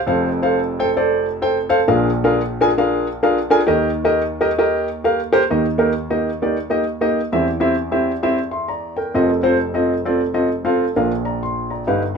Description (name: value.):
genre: gospel.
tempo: 132 BPM.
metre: 4/4.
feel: swing 62% on 8ths.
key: Eb major.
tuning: A4 = 442 Hz.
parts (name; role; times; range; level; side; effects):
warm grand piano; solo; 0.0-12.2 s; F1 to C6; -16 LUFS; equal; none.
room: moderate studio ambience, RT60 0.5 s.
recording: band playing live in one room.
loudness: -16 LUFS.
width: side -5 dB against mid.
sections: 0.0-5.5 A section; 5.5-12.2 B section.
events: none.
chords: 0.1 F; 1.9 Bb7; 3.7 Eb; 7.3 C/E; 9.1 F7; 11.0 Bb.